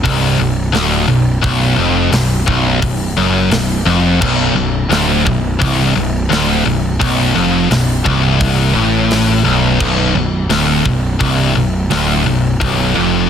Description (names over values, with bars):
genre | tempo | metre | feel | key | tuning
heavy metal | 86 BPM | 4/4 | straight | B phrygian | A4 = 441 Hz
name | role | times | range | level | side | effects
heavy high-gain guitar | riff | 0.0-13.3 s | B1 to A2 | -15 LUFS | left 7 dB | distortion
sludgy distorted guitar | riff | 0.0-13.3 s | B1 to A2 | -17 LUFS | right 9 dB | overdrive
fuzz picked electric bass | bass | 0.0-13.3 s | B0 to A1 | -19 LUFS | equal | overdrive
tight metal drum kit | drums | 0.1-12.8 s | crash cymbal, hi-hat, kick drum, snare drum | -21 LUFS | equal | soft clipping on kick
room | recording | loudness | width
light reverb | dense, heavily limited modern master | -11 LUFS | side -8 dB against mid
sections
0.0-13.3 A section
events
none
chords
0.0 Bm